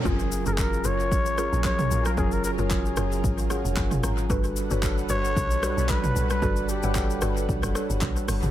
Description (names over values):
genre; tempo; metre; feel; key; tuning
amapiano; 113 BPM; 4/4; swing 55% on 16ths; unclear; A4 = 439 Hz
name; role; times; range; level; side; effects
trumpet with bucket mute; melody; 0.0-7.5 s; G4 to C#5; -30 LUFS; left 1 dB; dub echo
mellow tine electric piano; accompaniment; 0.0-8.5 s; F#3 to A#5; -30 LUFS; right 3 dB; medium stereo tremolo
lush unison pad; sustained chords; 0.0-8.5 s; F#3 to F#5; -34 LUFS; left 1 dB; chorus, phaser, sidechain pumping
mallet-like synth pluck; stabs; 0.0-7.9 s; E#4 to F#5; -36 LUFS; left 4 dB; chorus, dub echo
deep log drum bass; bass; 0.1-8.5 s; E#1 to B1; -27 LUFS; equal; none
deep house drum kit; drums; 0.1-8.5 s; handclaps, hi-hat, kick drum, rim click, shaker, toms; -28 LUFS; equal; dub echo
room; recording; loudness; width
little or no reverb; echo-heavy mix; -22 LUFS; side -12 dB against mid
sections
0.1-8.5 A section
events
drop 0.1-8.5; tine electric piano fill 3.2-4.3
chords
0.1 F#maj9; 4.3 Gmaj9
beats
| 0.05 0.58 1.11 1.64 | 2.17 2.71 3.24 3.77 | 4.30 4.83 5.36 5.89 | 6.42 6.95 7.49 8.02